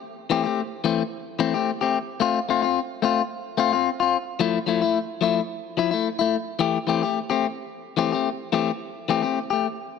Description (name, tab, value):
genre	highlife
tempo	110 BPM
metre	4/4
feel	swing 54% on 16ths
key	C major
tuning	A4 = 445 Hz
part	clean electric guitar	solo	0.3-9.7 s	E3 to G4	-22 LUFS	left 8 dB	warbly pitch drift
room	moderate plate reverb, RT60 2.7 s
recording	none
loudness	-22 LUFS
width	side -5 dB against mid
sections	0.0-6.6 A section; 6.6-10.0 A section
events	none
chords	0.0 C6; 2.2 F; 4.4 Fmaj7; 6.6 C6